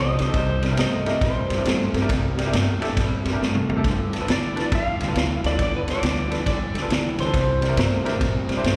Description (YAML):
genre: electric blues shuffle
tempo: 137 BPM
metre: 4/4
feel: swing 65% on 8ths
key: C mixolydian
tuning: A4 = 440 Hz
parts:
  - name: clean lap steel guitar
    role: melody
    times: 0.0-8.8 s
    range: B4 to F5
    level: -30 LUFS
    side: equal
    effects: slapback echo
  - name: electric guitar through a small old amp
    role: riff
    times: 0.0-8.8 s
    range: F2 to A3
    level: -30 LUFS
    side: equal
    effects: lush chorus, slapback echo
  - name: upright bass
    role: bass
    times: 0.0-8.8 s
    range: G1 to Bb2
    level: -28 LUFS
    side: equal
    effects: none
  - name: bright upright piano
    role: accompaniment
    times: 0.2-8.6 s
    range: C4 to D5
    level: -33 LUFS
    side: equal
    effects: slapback echo
  - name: vintage drum kit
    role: drums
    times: 0.2-8.8 s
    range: kick drum, ride cymbal, snare drum, toms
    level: -27 LUFS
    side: equal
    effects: none
room: light reverb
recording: live gig heard through the venue's PA, recital hall reverb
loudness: -22 LUFS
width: mono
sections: 0.0-8.8 A section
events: drum fill 3.4-3.8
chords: 0.3 C7; 3.8 G7; 7.3 C7